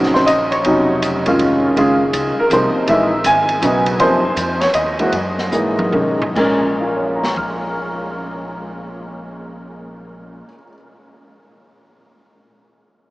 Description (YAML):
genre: jazz piano trio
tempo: 137-162 BPM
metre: 3/4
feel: swing 65% on 8ths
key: Bb minor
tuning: A4 = 440 Hz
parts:
  - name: warm upright piano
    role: melody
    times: 0.0-10.7 s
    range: Bb2 to F6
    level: -15 LUFS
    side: equal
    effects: lush chorus, diffuse ambient delay
  - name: upright bass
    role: bass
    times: 0.0-10.4 s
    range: F1 to B2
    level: -29 LUFS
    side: equal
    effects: none
  - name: open jazz drum kit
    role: drums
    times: 0.0-7.5 s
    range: crash cymbal, hi-hat, kick drum, ride cymbal, snare drum, toms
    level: -26 LUFS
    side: equal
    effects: none
room: wet huge ambient reverb, RT60 8.3 s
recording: dreamy mix soaked in reverb, small speaker sound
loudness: -14 LUFS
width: side -18 dB against mid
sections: 0.0-1.8 A section; 1.8-6.4 B section; 6.4-9.0 C section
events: slowing down 4.0-6.4; drum fill 5.5-6.4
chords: 0.0 Bbm9; 1.8 Gb5; 2.5 Bbsus24/C; 2.9 Emaj7#11; 3.6 B; 4.0 Gb6; 4.7 Ebmadd11; 5.1 Gb13; 5.9 B; 6.4 Bbm7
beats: 0.28 | 0.65 1.02 1.39 | 1.76 2.14 2.51 | 2.88 3.25 3.62 | 3.99 4.37 4.74 | 5.13 5.53 5.94 | 6.36 6.80 7.24 | 7.67 8.11 8.55